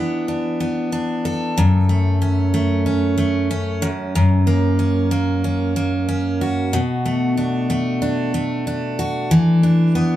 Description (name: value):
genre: pop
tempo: 93 BPM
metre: 4/4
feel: straight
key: F# minor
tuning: A4 = 443 Hz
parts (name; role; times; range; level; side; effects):
- picked steel-string acoustic guitar; solo; 0.0-10.2 s; F#2 to A4; -16 LUFS; equal; none
room: wet studio reverb, RT60 0.6 s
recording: heard from further back in the room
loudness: -17 LUFS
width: side -13 dB against mid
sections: 0.0-9.3 A section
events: none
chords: 0.0 E7sus4; 1.6 F#m; 3.8 F#; 6.7 Bm7; 9.3 E7sus4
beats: 0.29 0.93 | 1.58 2.22 2.87 3.51 | 4.16 4.80 5.45 6.09 | 6.73 7.38 8.02 8.67 | 9.31 9.95